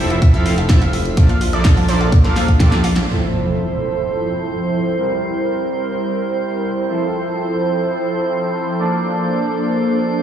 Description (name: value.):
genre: progressive house.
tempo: 126 BPM.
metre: 4/4.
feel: straight.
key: F major.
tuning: A4 = 441 Hz.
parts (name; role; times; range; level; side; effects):
airy breathy pad; sustained chords; 0.0-10.2 s; F3 to D5; -23 LUFS; right 1 dB; chorus, sidechain pumping.
soft supersaw; stabs; 0.0-10.2 s; F3 to F5; -20 LUFS; right 2 dB; phaser, sidechain pumping, low-pass filter, digital delay.
dark detuned saw bass; bass; 0.0-3.1 s; F1 to Bb1; -19 LUFS; equal; sidechain pumping.
drifting glass-harmonics texture; texture; 0.1-10.2 s; C5 to E5; -29 LUFS; left 2 dB; chorus, built-in reverb, sidechain pumping.
analog pluck; arpeggios; 0.1-3.0 s; F4 to F5; -26 LUFS; left 1 dB; chorus, sidechain pumping, digital delay.
pop drum kit; drums; 0.1-3.1 s; hi-hat, snare drum; -24 LUFS; equal; low-pass filter on hats, low-pass filter on snare, low-pass filter on room.
electronic kick drum; drums; 0.2-2.7 s; none; -12 LUFS; equal; none.
impact; sound effects; 3.1-5.0 s; none; -25 LUFS; equal; none.
room: light reverb, digital ambience.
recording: played on a big sound system in a bare room, large studio reverb, small room ambience.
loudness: -15 LUFS.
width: side -9 dB against mid.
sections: 0.0-3.1 A section; 3.1-10.2 B section.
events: drum fill 2.4-3.1; band accent 3.0; impact 3.1-5.0; filter sweep on supersaw synth 3.1-10.2.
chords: 0.0 Fmaj7; 1.2 Bbmaj7; 3.1 Fmaj7; 5.0 C7; 6.9 Fmaj7; 8.8 Bbmaj7.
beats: 0.22 0.70 | 1.17 1.65 2.12 2.60 | 3.08 3.55 4.03 4.51 | 4.98 5.46 5.93 6.41 | 6.89 7.36 7.84 8.32 | 8.79 9.27 9.74 10.22.